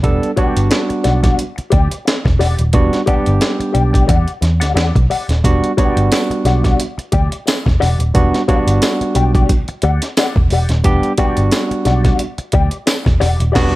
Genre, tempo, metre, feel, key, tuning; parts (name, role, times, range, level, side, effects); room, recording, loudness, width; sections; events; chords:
funk; 89 BPM; 4/4; swing 56% on 16ths; E minor; A4 = 439 Hz
barky tine electric piano; stabs; 0.0-13.8 s; G3 to A4; -17 LUFS; right 2 dB; overdrive
vintage muted picked electric bass; bass; 0.0-13.8 s; D#1 to E2; -15 LUFS; equal
breakbeat sampler-style drum kit; drums; 0.0-13.8 s; crash cymbal, hi-hat, kick drum, snare drum; -16 LUFS; equal
mellow electric guitar; accompaniment; 0.4-13.8 s; G4 to G5; -21 LUFS; left 6 dB; wah
tambourine; percussion; 6.1-13.1 s; -28 LUFS; left 2 dB
little or no reverb; -12 LUFS; side -18 dB against mid
0.0-13.8 A section
band accent 13.6
0.0 Em9